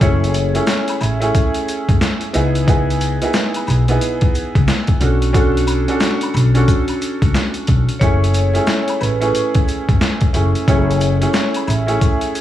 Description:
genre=hip hop, boom-bap hip-hop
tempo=90 BPM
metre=4/4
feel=swing 62% on 16ths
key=F# minor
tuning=A4 = 440 Hz
part: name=vibraphone with medium mallets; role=melody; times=0.0-1.5, 8.0-12.2 s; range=B4 to E5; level=-24 LUFS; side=left 2 dB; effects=high-pass filter, low-pass filter, tape echo
part: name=warm upright piano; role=accompaniment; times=0.0-12.4 s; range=A3 to A4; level=-20 LUFS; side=right 2 dB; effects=cassette tape, high-pass filter, low-pass filter
part: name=upright bass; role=bass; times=0.0-12.0 s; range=F#1 to C#2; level=-17 LUFS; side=equal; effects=none
part: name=boom bap sampler-style drum kit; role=drums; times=0.0-12.4 s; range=hi-hat, kick drum, snare drum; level=-18 LUFS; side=equal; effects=overdrive
part: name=maracas and woodblock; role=percussion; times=0.0-12.4 s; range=none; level=-33 LUFS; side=left 3 dB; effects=none
room=small room ambience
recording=vinyl crackle, studio reverb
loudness=-14 LUFS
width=side -12 dB against mid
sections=0.0-12.4 A section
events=none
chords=0.0 F#m7; 2.3 C#m7; 5.0 Bm7; 8.0 F#m7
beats=| 0.01 0.68 1.34 2.01 | 2.68 3.34 4.01 4.68 | 5.34 6.01 6.68 7.34 | 8.01 8.68 9.34 10.01 | 10.68 11.34 12.01

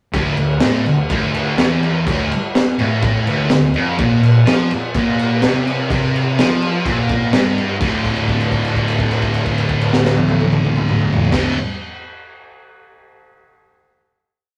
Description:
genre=garage rock duo or trio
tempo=126 BPM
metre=4/4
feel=straight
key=D minor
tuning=A4 = 440 Hz
part: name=thick fuzz guitar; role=riff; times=0.1-11.6 s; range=D2 to F3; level=-19 LUFS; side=equal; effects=distortion
part: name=crunchy breakbeat drum kit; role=drums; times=0.1-11.4 s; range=crash cymbal, kick drum, snare drum, toms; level=-20 LUFS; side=equal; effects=none
room=moderate studio reverb, RT60 0.6 s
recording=rough rehearsal-room recording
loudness=-16 LUFS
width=mono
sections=0.1-7.8 riff; 7.8-11.6 final chord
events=held note 7.8-11.3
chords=0.1 D5; 4.0 Bb5; 7.8 D5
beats=| 0.14 0.63 1.11 1.59 | 2.07 2.55 3.03 3.51 | 3.99 4.47 4.95 5.43 | 5.90 6.38 6.86 7.33 | 7.81 8.28 8.76 9.23 | 9.71 10.19 10.66 11.14

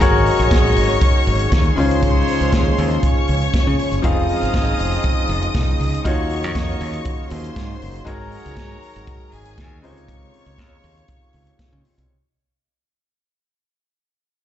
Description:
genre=disco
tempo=119 BPM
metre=4/4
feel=straight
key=Db major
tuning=A4 = 439 Hz
part: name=clear studio string section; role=second line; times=0.0-12.1 s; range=Ab4 to Eb6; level=-26 LUFS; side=left 2 dB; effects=slapback echo
part: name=clear concert grand piano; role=accompaniment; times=0.0-12.1 s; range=C3 to F5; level=-23 LUFS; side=left 4 dB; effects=slapback echo
part: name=mellow French horn section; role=sustained chords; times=0.0-12.1 s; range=Db3 to F4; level=-27 LUFS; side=right 1 dB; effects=stereo widening
part: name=warm horn section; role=stabs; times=0.0-11.8 s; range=Ab3 to F5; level=-28 LUFS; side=right 2 dB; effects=slapback echo
part: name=modern bright fingered electric bass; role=bass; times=0.0-12.1 s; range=F1 to Db3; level=-21 LUFS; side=equal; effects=none
part: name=vintage drum kit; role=drums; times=0.0-12.1 s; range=hi-hat, kick drum, snare drum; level=-20 LUFS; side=equal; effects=none
room=small room ambience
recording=live gig heard through the venue's PA, club reverb, nothing above 7.9 kHz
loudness=-15 LUFS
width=side -11 dB against mid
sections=0.0-12.1 A section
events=fade-out 0.0-12.1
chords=0.0 Ab7sus4; 1.8 Dbmaj7; 4.0 Fm7; 6.1 Ebm7; 8.1 Ab7sus4; 9.8 Dbmaj7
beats=| 0.01 0.51 1.02 1.52 | 2.02 2.53 3.03 3.53 | 4.04 4.54 5.04 5.55 | 6.05 6.56 7.06 7.56 | 8.07 8.57 9.07 9.58 | 10.08 10.58 11.09 11.59

